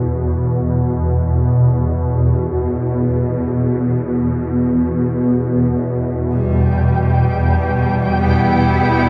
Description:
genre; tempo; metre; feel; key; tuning
ambient; free time; none; none; E minor; A4 = 438 Hz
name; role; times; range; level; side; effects
swarming drone; drone; 0.0-9.1 s; E2 to B2; -17 LUFS; equal; built-in reverb, phaser
clear studio cello section; sustained chords; 6.3-9.1 s; G3 to E4; -21 LUFS; equal; none
flickering grainy texture; texture; 6.6-9.1 s; G5; -24 LUFS; equal; built-in reverb, shimmer reverb
room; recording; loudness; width
wet cathedral reverb, RT60 5.6 s; dark, warm production; -17 LUFS; mono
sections
0.0-9.1 A section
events
none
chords
0.0 E5; 6.3 Em

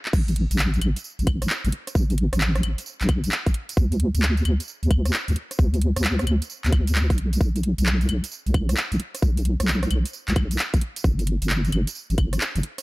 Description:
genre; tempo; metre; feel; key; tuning
UK garage, two-step garage; 132 BPM; 4/4; swing 66% on 16ths; unclear; A4 = 440 Hz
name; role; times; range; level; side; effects
deep soft wobble bass; bass; 0.1-12.6 s; G1 to D2; -21 LUFS; equal; chorus, sidechain pumping, high-pass filter
electronic kick drum; drums; 0.1-12.3 s; none; -21 LUFS; equal; high-pass filter on kick
garage drum kit; drums; 0.1-12.8 s; claves, crash cymbal, handclaps, hi-hat, rim click, tambourine; -28 LUFS; equal; overdrive
room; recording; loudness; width
digital ambience; none; -20 LUFS; side -22 dB against mid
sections
0.1-12.8 A section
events
drop 0.1-12.8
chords
none

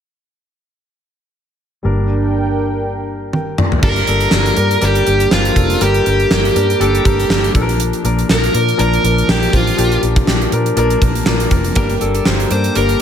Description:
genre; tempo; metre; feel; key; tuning
1980s-style pop; 121 BPM; 4/4; swing 55% on 16ths; G minor; A4 = 439 Hz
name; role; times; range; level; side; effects
warm concert grand piano; accompaniment; 1.8-13.0 s; F3 to G5; -18 LUFS; left 3 dB; none
vintage muted fingered electric bass; bass; 1.8-12.9 s; F1 to Bb2; -18 LUFS; equal; none
warm analog pad; sustained chords; 1.9-3.8 s; D4 to G5; -22 LUFS; right 4 dB; chorus
gated 80s drum kit; drums; 3.3-13.0 s; crash cymbal, hi-hat, kick drum, snare drum, toms; -17 LUFS; right 1 dB; none
dark smooth lead guitar; melody; 3.8-13.0 s; F4 to C5; -17 LUFS; right 2 dB; overdrive, ping-pong delay
twelve-string electric guitar; riff; 11.8-13.0 s; Bb3 to G4; -23 LUFS; right 6 dB; analog chorus
room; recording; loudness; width
light reverb, small room ambience; none; -12 LUFS; side -8 dB against mid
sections
1.8-3.8 A section; 3.8-13.0 B section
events
drum fill 3.3-3.8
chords
1.8 Gm

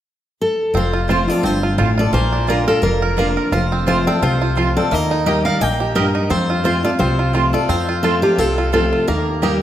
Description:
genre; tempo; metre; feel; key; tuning
bluegrass; 173 BPM; 4/4; swing 55% on 8ths; F mixolydian; A4 = 440 Hz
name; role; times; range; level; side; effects
picked steel-string acoustic guitar; melody; 0.4-9.6 s; G4 to G5; -20 LUFS; equal; none
picked steel-string acoustic guitar; accompaniment; 0.7-9.6 s; F2 to G4; -21 LUFS; left 1 dB; none
bluegrass banjo; arpeggios; 0.7-9.6 s; Bb3 to Bb4; -22 LUFS; right 4 dB; none
upright bass; bass; 0.7-9.6 s; F1 to F2; -22 LUFS; equal; none
lap resonator guitar; second line; 0.8-9.6 s; D4 to Eb5; -26 LUFS; left 6 dB; none
mandolin; stabs; 1.1-9.5 s; Bb3 to Bb5; -25 LUFS; right 6 dB; none
room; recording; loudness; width
wet recital hall reverb, RT60 1.4 s; none; -15 LUFS; side -11 dB against mid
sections
0.7-9.6 A section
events
none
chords
0.0 N.C.; 0.7 F; 2.1 Bb; 3.5 F; 4.9 Eb; 6.3 F; 9.1 Eb

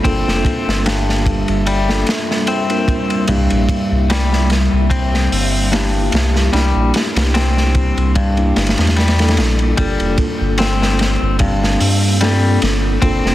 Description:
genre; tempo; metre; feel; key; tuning
trip hop; 74 BPM; 4/4; swing 54% on 16ths; G dorian; A4 = 440 Hz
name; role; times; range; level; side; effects
mellow tine electric piano; accompaniment; 0.0-13.3 s; Bb3 to Bb4; -22 LUFS; equal; fast stereo tremolo, tape echo
deep dark ambient pad; sustained chords; 0.0-13.3 s; G3 to E5; -23 LUFS; equal; chorus, built-in reverb
clean electric guitar; arpeggios; 0.0-13.3 s; G2 to C4; -21 LUFS; left 3 dB; tape echo
round analog bass; bass; 0.0-13.3 s; F1 to G2; -16 LUFS; equal; none
crunchy breakbeat drum kit; drums; 0.0-13.3 s; hi-hat, kick drum, ride cymbal, snare drum; -19 LUFS; equal; none
room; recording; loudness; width
studio reverb; dense, heavily limited modern master, vinyl crackle; -13 LUFS; side -14 dB against mid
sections
0.0-9.8 A section; 9.8-13.3 B section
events
none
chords
0.0 Gm7; 3.3 C7; 9.8 Gm7

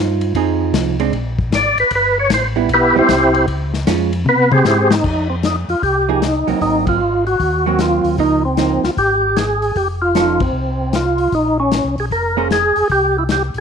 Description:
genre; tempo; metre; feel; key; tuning
soul jazz organ trio; 153 BPM; 4/4; swing 65% on 8ths; F minor from 5.0 s; A4 = 440 Hz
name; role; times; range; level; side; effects
vintage hollow-body jazz guitar; accompaniment; 0.0-12.5 s; F3 to C5; -19 LUFS; right 11 dB; none
mellow tonewheel organ; bass; 0.0-13.6 s; F1 to C3; -21 LUFS; equal; chorus vibrato, slow rotary speaker
warm soul drum kit; drums; 0.2-13.6 s; crash cymbal, hi-hat, kick drum, ride cymbal, snare drum, toms; -21 LUFS; left 5 dB; none
percussive tonewheel organ; melody; 1.5-13.4 s; B3 to D5; -15 LUFS; equal; slow rotary speaker, overdrive, chorus vibrato
room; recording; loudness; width
light reverb, studio reverb; 1960s-style stereo; -13 LUFS; side -6 dB against mid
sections
0.0-5.0 A section; 5.0-13.6 B section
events
tonewheel organ solo 0.0-5.0; drum fill 4.3-5.0; band accent 6.8, 10.3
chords
0.3 Fm7; 1.1 Abmadd9; 1.9 Cmaj7; 3.5 Db; 4.3 C5; 5.0 F9sus4; 6.6 Ab9; 8.2 Db69; 9.8 F7b13; 11.3 Bbm9; 12.9 C5

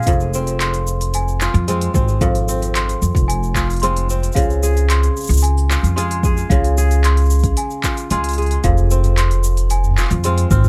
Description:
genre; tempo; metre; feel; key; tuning
folktronica; 112 BPM; 4/4; straight; F minor; A4 = 440 Hz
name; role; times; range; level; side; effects
worn celesta; second line; 0.0-10.7 s; F5 to F6; -28 LUFS; equal; vintage 12-bit sampler grit, tape echo, plate reverb
kora; arpeggios; 0.0-10.7 s; F2 to Ab4; -26 LUFS; equal; tape echo
organic electronic drum kit; drums; 0.0-10.7 s; handclaps, hi-hat, shaker, toms; -26 LUFS; equal; none
upright bass; bass; 0.1-10.7 s; F1 to F2; -19 LUFS; equal; none
electronic kick drum; drums; 0.1-10.6 s; none; -21 LUFS; equal; none
room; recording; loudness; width
little or no reverb; none; -17 LUFS; mono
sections
0.0-10.7 A section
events
none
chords
0.1 Fm; 4.4 Db; 8.6 Fm

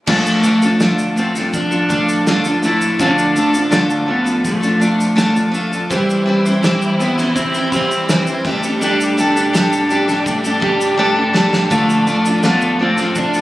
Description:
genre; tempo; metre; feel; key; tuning
acoustic pop; 83 BPM; 4/4; straight; unclear; A4 = 441 Hz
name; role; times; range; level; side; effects
electric slide guitar; melody; 0.1-13.4 s; G3 to E4; -18 LUFS; equal; none
picked steel-string acoustic guitar; accompaniment; 0.1-13.4 s; D3 to C5; -17 LUFS; equal; none
rich symphonic string section; sustained chords; 0.1-13.4 s; E2 to E4; -24 LUFS; left 1 dB; none
clean electric guitar; arpeggios; 0.1-13.4 s; E3 to G4; -23 LUFS; right 1 dB; none
loose indie drum kit; drums; 0.1-13.4 s; crash cymbal, kick drum, shaker, snare drum; -22 LUFS; equal; none
room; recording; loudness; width
light reverb; recorded on a phone in the room, studio reverb; -13 LUFS; side -16 dB against mid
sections
0.1-13.4 A section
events
drum fill 11.0-11.7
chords
0.1 Dm; 5.9 C/E; 8.4 Gsus2; 11.7 Dm

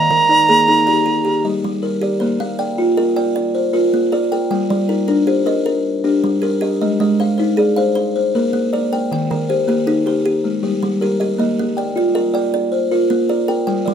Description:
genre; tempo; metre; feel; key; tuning
southern african traditional; 104 BPM (dotted quarters); 12/8; straight; Bb mixolydian; A4 = 442 Hz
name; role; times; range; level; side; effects
bright reedy wooden flute; melody; 0.0-1.5 s; Bb5; -12 LUFS; right 3 dB; none
buzzing kalimba; arpeggios; 0.0-13.9 s; Eb3 to G5; -17 LUFS; left 2 dB; none
kalimba; arpeggios; 0.0-13.9 s; Eb3 to G5; -20 LUFS; right 2 dB; none
room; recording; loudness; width
light reverb; close, detailed microphones; -14 LUFS; side -8 dB against mid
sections
0.0-2.2 A section; 2.2-13.9 B section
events
none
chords
0.0 Eb; 1.1 Gm; 2.2 Bb; 4.5 Gm; 6.8 Ab; 8.0 Bb; 9.1 Eb; 10.2 Gm; 11.4 Bb

